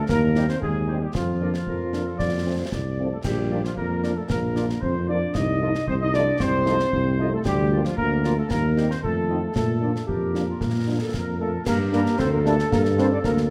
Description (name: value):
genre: military-style march for wind band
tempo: 114 BPM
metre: 2/4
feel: straight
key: Bb major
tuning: A4 = 440 Hz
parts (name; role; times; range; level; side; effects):
- dark trumpet section; melody; 0.0-13.4 s; F4 to Eb5; -32 LUFS; equal; none
- mellow euphonium; second line; 0.0-13.5 s; F3 to Eb4; -29 LUFS; equal; none
- mellow tuba; bass; 0.1-13.5 s; Bb1 to Bb2; -27 LUFS; equal; none
- concert snare drum, concert bass drum and clash cymbals; drums; 0.1-13.5 s; none; -34 LUFS; equal; none
- warm woodwind section; second line; 0.4-13.5 s; F4 to Eb5; -33 LUFS; equal; none
- dark French horn section; accompaniment; 0.4-13.1 s; F3 to F4; -35 LUFS; equal; none
- flute section; second line; 11.1-13.3 s; A4 to D5; -34 LUFS; equal; none
- warm trombone section; sustained chords; 11.9-13.1 s; G3 to D4; -34 LUFS; equal; none
room: moderate concert hall reverb, RT60 1.9 s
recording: none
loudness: -23 LUFS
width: mono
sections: 0.0-11.7 A section; 11.7-13.5 B section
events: none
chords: 0.1 Cm/Eb; 1.1 Bb/F; 2.2 F; 3.2 Bb; 5.3 F7/C; 7.4 Bb/D; 8.5 Cm7/Eb; 9.0 F7; 9.6 Bb; 11.7 Gm